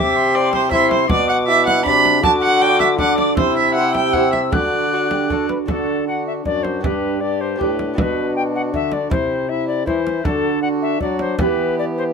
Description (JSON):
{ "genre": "classical, renaissance-style consort dance", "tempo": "158 BPM", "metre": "3/4", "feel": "straight", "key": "D mixolydian", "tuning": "A4 = 440 Hz", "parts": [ { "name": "mellow alto recorder", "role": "melody", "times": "0.0-12.0 s", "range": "A4 to F#6", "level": "-24 LUFS", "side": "left 6 dB", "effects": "none" }, { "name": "warm viola", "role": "second line", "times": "0.0-12.1 s", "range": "E4 to B5", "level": "-20 LUFS", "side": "right 3 dB", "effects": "none" }, { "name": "bright trombone", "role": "accompaniment", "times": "0.0-12.1 s", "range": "B3 to B4", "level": "-23 LUFS", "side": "left 4 dB", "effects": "none" }, { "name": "lute", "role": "accompaniment", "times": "0.0-12.1 s", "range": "F#2 to D5", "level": "-24 LUFS", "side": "right 3 dB", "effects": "none" }, { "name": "clear trombone", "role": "bass", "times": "0.0-12.1 s", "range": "F#2 to F#3", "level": "-23 LUFS", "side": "equal", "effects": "none" }, { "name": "frame drum", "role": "percussion", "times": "0.5-11.6 s", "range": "none", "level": "-24 LUFS", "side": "right 1 dB", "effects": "none" } ], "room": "light reverb", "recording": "minimal, uncompressed stereo recording", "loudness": "-15 LUFS", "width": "side -6 dB against mid", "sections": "0.0-5.7 A section; 5.7-12.1 B section", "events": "none", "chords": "0.0 C; 1.1 Bm; 2.2 D; 3.4 C; 4.5 D; 6.8 G; 8.0 Bm; 9.1 C; 10.3 D; 11.4 Em" }